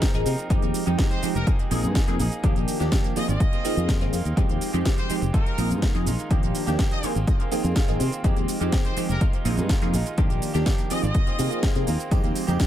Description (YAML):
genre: filtered disco house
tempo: 124 BPM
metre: 4/4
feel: straight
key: unclear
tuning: A4 = 441 Hz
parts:
  - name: funky polysynth comp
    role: accompaniment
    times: 0.0-12.7 s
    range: Eb3 to Ab4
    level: -28 LUFS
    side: right 1 dB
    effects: chorus, phaser, vintage 12-bit sampler grit, sidechain pumping, tape echo
  - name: direct-recorded clean electric guitar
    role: riff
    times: 0.0-12.7 s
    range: Eb3 to Bb4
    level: -34 LUFS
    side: right 2 dB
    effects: vintage 12-bit sampler grit, sidechain pumping, tape echo
  - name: electronic kick drum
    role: drums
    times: 0.0-12.7 s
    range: none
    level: -22 LUFS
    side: equal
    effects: none
  - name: house drum kit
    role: drums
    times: 0.0-12.7 s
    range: hi-hat, shaker, snare drum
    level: -32 LUFS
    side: right 1 dB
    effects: sidechain pumping on hats, sidechain pumping on perc, sidechain pumping on cymbals, tape echo
  - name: fingered electric bass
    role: bass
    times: 0.1-12.6 s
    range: F1 to C3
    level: -25 LUFS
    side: equal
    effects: sidechain pumping
  - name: brilliant trumpet section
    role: melody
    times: 1.1-11.7 s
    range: Bb4 to Eb5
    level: -35 LUFS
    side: left 1 dB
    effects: sidechain pumping, tape echo
  - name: tambourine and congas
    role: percussion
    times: 12.1-12.7 s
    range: none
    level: -35 LUFS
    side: right 5 dB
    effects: none
room: light reverb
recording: echo-heavy mix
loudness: -21 LUFS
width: side -11 dB against mid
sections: 0.0-12.7 A section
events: none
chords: 0.0 Ab69; 0.5 Fm9; 1.5 Bb7sus4; 2.4 Ebmaj9; 3.2 Ab69; 4.4 Fm9; 5.3 Bb7sus4; 6.3 Ebmaj9; 7.0 Ab69; 8.2 Fm9; 9.2 Bb7sus4; 10.2 Ebmaj9; 10.9 Ab69; 12.1 Fm9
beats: 0.02 | 0.50 0.98 1.47 1.95 | 2.44 2.92 3.40 3.89 | 4.37 4.86 5.34 5.82 | 6.31 6.79 7.28 7.76 | 8.24 8.73 9.21 9.70 | 10.18 10.66 11.15 11.63 | 12.11 12.60